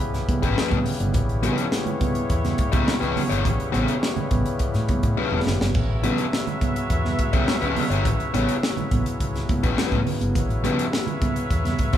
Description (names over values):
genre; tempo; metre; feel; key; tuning
funk; 104 BPM; 4/4; straight; A mixolydian; A4 = 439 Hz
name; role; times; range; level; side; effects
clear horn section; second line; 0.0-12.0 s; E4 to E5; -32 LUFS; right 1 dB; none
accordion; sustained chords; 0.0-12.0 s; C#3 to B3; -31 LUFS; left 3 dB; none
mellow tine electric piano; stabs; 0.0-12.0 s; A2 to B3; -28 LUFS; right 3 dB; medium stereo tremolo
vintage muted fingered electric bass; bass; 0.0-12.0 s; E1 to A2; -27 LUFS; equal; none
crisp fusion drum kit; drums; 0.0-12.0 s; crash cymbal, hi-hat, kick drum, snare drum; -25 LUFS; equal; none
congas; percussion; 0.1-11.9 s; none; -34 LUFS; right 6 dB; none
overdriven electric guitar; accompaniment; 0.4-12.0 s; C#4 to C#5; -27 LUFS; left 6 dB; spring reverb
room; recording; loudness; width
wet large studio reverb, RT60 1.4 s; band playing live in one room; -20 LUFS; side -11 dB against mid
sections
0.0-12.0 A section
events
drum fill 5.2-5.8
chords
0.0 A9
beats
0.00 0.57 | 1.15 1.72 2.30 2.88 | 3.45 4.03 4.60 5.18 | 5.75 6.33 6.90 7.48 | 8.05 8.63 9.20 9.78 | 10.35 10.93 11.50